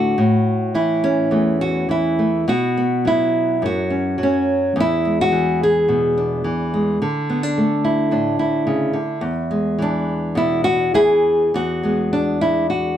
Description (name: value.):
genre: folk, solo fingerstyle acoustic guitar.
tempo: 106 BPM.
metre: 4/4.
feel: rubato.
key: E mixolydian.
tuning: A4 = 440 Hz.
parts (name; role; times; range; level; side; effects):
nylon-string guitar; solo; 0.0-13.0 s; E2 to G#4; -16 LUFS; equal; none.
room: moderate studio reverb, RT60 0.5 s.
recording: dark, warm production.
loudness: -16 LUFS.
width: side -10 dB against mid.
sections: 0.0-11.5 A section; 11.5-13.0 B section.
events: none.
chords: 0.2 A; 2.5 Bsus2; 4.8 E7; 7.0 Dsus2; 9.2 E.